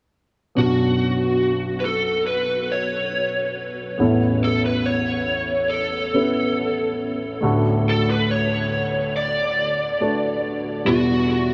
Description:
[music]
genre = pop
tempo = 70 BPM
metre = 4/4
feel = straight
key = B minor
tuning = A4 = 440 Hz
[part]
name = lead guitar through a small cranked amp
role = melody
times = 0.6-11.5 s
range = F#4 to D5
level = -25 LUFS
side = equal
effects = overdrive, ensemble chorus, diffuse ambient delay
[part]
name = warm baby grand piano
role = accompaniment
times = 0.6-11.5 s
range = A1 to B4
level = -24 LUFS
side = equal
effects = subtle chorus
[sound]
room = wet huge ambient reverb, RT60 8.5 s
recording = dreamy mix soaked in reverb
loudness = -21 LUFS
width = mono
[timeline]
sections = 0.6-11.5 A section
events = none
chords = 0.6 Bmadd9; 4.0 Aadd9; 7.4 D; 10.9 Emadd9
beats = | 0.58 1.43 2.29 3.15 | 4.00 4.86 5.72 6.58 | 7.43 8.29 9.15 10.00 | 10.86

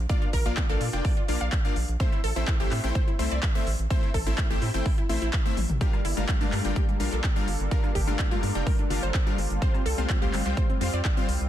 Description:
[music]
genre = progressive house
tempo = 126 BPM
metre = 4/4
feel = straight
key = G dorian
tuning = A4 = 444 Hz
[part]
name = round analog bass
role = bass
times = 0.0-11.5 s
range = F1 to Bb2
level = -28 LUFS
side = equal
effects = sidechain pumping
[part]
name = wide unison pluck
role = arpeggios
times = 0.1-11.4 s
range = G3 to F5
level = -34 LUFS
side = right 1 dB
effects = sidechain pumping, ping-pong delay
[part]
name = supersaw stab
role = stabs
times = 0.1-11.3 s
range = G3 to G5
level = -32 LUFS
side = left 3 dB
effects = sidechain pumping, ping-pong delay
[part]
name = big-room dance drum kit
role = drums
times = 0.1-11.5 s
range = handclaps, hi-hat, toms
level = -34 LUFS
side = left 1 dB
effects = none
[part]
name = electronic kick drum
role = drums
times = 0.1-11.1 s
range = none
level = -25 LUFS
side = equal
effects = none
[part]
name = lush unison pad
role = sustained chords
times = 5.8-11.5 s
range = G3 to A4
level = -36 LUFS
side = right 1 dB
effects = chorus, vintage 12-bit sampler grit, sidechain pumping
[part]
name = woodblock and congas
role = percussion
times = 5.9-10.7 s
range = none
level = -39 LUFS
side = left 8 dB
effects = none
[sound]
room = little or no reverb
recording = dense, heavily limited modern master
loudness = -23 LUFS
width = side -12 dB against mid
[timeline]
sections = 0.0-11.5 A section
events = drum fill 5.6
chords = 0.0 Bb; 2.0 Am; 5.8 Gm7; 9.6 Csus4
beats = | 0.10 0.57 1.05 1.52 | 2.00 2.48 2.95 3.43 | 3.90 4.38 4.86 5.33 | 5.81 6.29 6.76 7.24 | 7.71 8.19 8.67 9.14 | 9.62 10.10 10.57 11.05

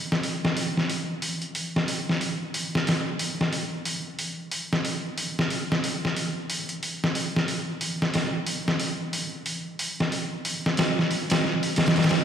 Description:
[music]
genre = trip hop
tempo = 91 BPM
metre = 4/4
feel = swing 59% on 16ths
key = none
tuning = none
[part]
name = trip hop sampler-style drum kit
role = drums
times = 0.1-12.2 s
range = hi-hat, snare drum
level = -24 LUFS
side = equal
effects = studio reverb
[sound]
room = wet church reverb, RT60 3.2 s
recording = dreamy mix soaked in reverb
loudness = -24 LUFS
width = side -8 dB against mid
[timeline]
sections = 0.0-12.2 A section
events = none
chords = none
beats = 0.56 1.22 1.88 | 2.54 3.20 3.86 4.52 | 5.18 5.83 6.50 7.15 | 7.81 8.47 9.13 9.79 | 10.45 11.11 11.77

